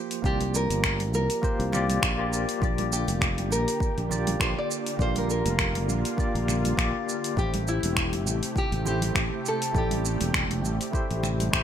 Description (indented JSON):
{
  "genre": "sunset chillout",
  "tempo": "101 BPM",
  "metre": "4/4",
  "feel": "swing 55% on 16ths",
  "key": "unclear",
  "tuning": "A4 = 440 Hz",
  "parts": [
    { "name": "nylon-string guitar", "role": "melody", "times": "0.0-11.6 s", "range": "E4 to D5", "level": "-32 LUFS", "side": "equal", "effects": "digital delay" },
    { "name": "tine electric piano", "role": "accompaniment", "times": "0.0-11.6 s", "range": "A3 to F5", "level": "-31 LUFS", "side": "moving between left 6 dB and right 8 dB", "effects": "fast tremolo, auto-pan, digital delay" },
    { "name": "deep house drum kit", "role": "drums", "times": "0.1-11.6 s", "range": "finger snaps, hi-hat, shaker", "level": "-30 LUFS", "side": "equal", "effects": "gated reverb" },
    { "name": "sustaining fretless electric bass", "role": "bass", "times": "0.2-11.6 s", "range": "E1 to C2", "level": "-28 LUFS", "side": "equal", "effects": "none" },
    { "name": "electronic kick drum", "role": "drums", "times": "0.2-11.6 s", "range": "none", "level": "-29 LUFS", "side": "equal", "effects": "none" },
    { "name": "congas", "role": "percussion", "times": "0.4-11.5 s", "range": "none", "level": "-36 LUFS", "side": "right 4 dB", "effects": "none" },
    { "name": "lush unison pad", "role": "sustained chords", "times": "2.6-11.6 s", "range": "C3 to G4", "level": "-34 LUFS", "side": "equal", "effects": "chorus" }
  ],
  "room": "light reverb",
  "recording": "bright 1980s-style digital production",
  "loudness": "-24 LUFS",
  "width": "side -9 dB against mid",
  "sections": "0.0-11.6 A section",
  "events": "none",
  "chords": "0.0 C7sus4; 2.6 Bb6; 7.4 Am7"
}